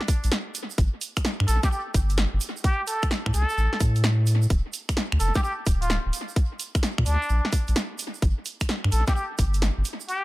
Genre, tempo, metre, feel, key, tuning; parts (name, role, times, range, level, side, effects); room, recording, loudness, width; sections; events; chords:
UK garage, two-step garage; 129 BPM; 4/4; swing 66% on 16ths; A4 = 440 Hz
punchy analog drum machine; drums; 0.0-10.2 s; finger snaps, hi-hat, snare drum; -29 LUFS; equal; analog delay
electronic kick drum; drums; 0.1-9.5 s; -23 LUFS; equal; overdrive
tube shaker; percussion; 0.1-10.2 s; -38 LUFS; right 8 dB; analog delay
saturated sub bass; bass; 0.2-9.8 s; D1 to Bb2; -22 LUFS; equal
trumpet with plunger mute; melody; 1.5-10.2 s; D4 to A4; -30 LUFS; equal; analog delay
digital ambience; echo-heavy mix; -22 LUFS; side -18 dB against mid
0.0-10.2 A section
kick drops out 10.1
0.0 N.C.; 6.1 Bb; 8.0 N.C.